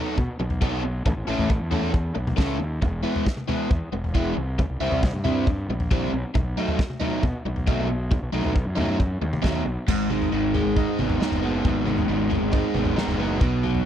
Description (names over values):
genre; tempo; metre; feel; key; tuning
indie rock; 136 BPM; 4/4; straight; unclear; A4 = 440 Hz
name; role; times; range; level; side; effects
overdriven electric guitar; riff; 0.0-13.9 s; G#2 to A4; -25 LUFS; equal; spring reverb
fuzz fingered electric bass; bass; 0.2-13.8 s; E1 to B2; -27 LUFS; equal; overdrive
loose indie drum kit; drums; 0.2-13.8 s; crash cymbal, kick drum, snare drum, toms; -26 LUFS; equal; none
room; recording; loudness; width
little or no reverb; dry, close 1970s-style studio recording; -21 LUFS; side -10 dB against mid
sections
0.0-9.9 A section; 9.9-13.9 B section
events
none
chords
0.0 B7; 1.1 A; 2.8 E; 4.4 C; 6.1 B7; 9.9 G#m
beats
0.17 0.61 | 1.05 1.49 1.94 2.38 | 2.82 3.26 3.70 4.14 | 4.58 5.02 5.46 5.90 | 6.35 6.79 7.23 7.67 | 8.11 8.56 9.00 9.44 | 9.88 10.33 10.77 11.21 | 11.65 12.09 12.54 12.98 | 13.42